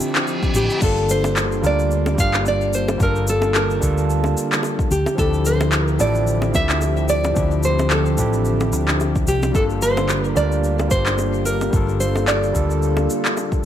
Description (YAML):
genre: sunset chillout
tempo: 110 BPM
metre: 4/4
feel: swing 56% on 16ths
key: G dorian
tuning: A4 = 438 Hz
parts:
  - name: nylon-string guitar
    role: melody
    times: 0.0-13.3 s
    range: G4 to F5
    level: -22 LUFS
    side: equal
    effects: ping-pong delay
  - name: overdriven tine electric piano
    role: accompaniment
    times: 0.0-13.7 s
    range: F3 to Bb4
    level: -25 LUFS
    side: moving between left 6 dB and right 5 dB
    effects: auto-pan, ping-pong delay
  - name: airy breathy pad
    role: sustained chords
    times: 0.0-13.7 s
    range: D3 to A5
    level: -27 LUFS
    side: left 1 dB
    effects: chorus
  - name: deep house drum kit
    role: drums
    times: 0.0-13.6 s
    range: crash cymbal, handclaps, shaker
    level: -24 LUFS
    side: left 1 dB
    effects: overdrive
  - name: reverse cymbal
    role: sound effects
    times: 0.0-0.8 s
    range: none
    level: -29 LUFS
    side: right 1 dB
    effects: none
  - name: electronic kick drum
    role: drums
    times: 0.4-13.6 s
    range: none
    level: -22 LUFS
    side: equal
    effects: overdrive
  - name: hollow-body short-scale fingered electric bass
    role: bass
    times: 0.5-13.1 s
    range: G1 to D2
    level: -21 LUFS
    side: equal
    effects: none
  - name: bongos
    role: percussion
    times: 1.2-13.5 s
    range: none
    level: -27 LUFS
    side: equal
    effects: none
room: light reverb, digital ambience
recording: none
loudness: -16 LUFS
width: side -10 dB against mid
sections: 0.0-13.7 A section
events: reverse cymbal 0.0-0.8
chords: 0.0 Dm11; 0.8 Gm9; 4.9 Dm11; 9.5 Gm9